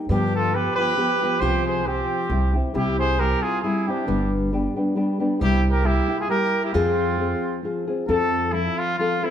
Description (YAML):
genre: mexican folk, mariachi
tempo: 135 BPM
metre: 3/4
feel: swing 54% on 8ths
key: F harmonic minor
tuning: A4 = 441 Hz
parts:
  - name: nylon-string guitar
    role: accompaniment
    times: 0.0-9.3 s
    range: G2 to A4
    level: -23 LUFS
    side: left 2 dB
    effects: none
  - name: clear trumpet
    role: melody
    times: 0.1-9.3 s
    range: E4 to C5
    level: -24 LUFS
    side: equal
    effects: none
  - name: clear trumpet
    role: second line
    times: 0.1-7.6 s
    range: C4 to Ab4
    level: -28 LUFS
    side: right 7 dB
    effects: none
  - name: upright bass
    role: bass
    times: 0.1-8.7 s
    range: G1 to G2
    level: -25 LUFS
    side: right 1 dB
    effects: none
room: moderate recital hall reverb, RT60 1.4 s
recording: none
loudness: -20 LUFS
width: side -9 dB against mid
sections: 0.0-8.1 A section; 8.1-9.3 B section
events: none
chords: 0.1 G7; 1.4 Csus4; 2.3 C; 4.1 G; 5.4 C7; 6.7 Fm; 8.1 F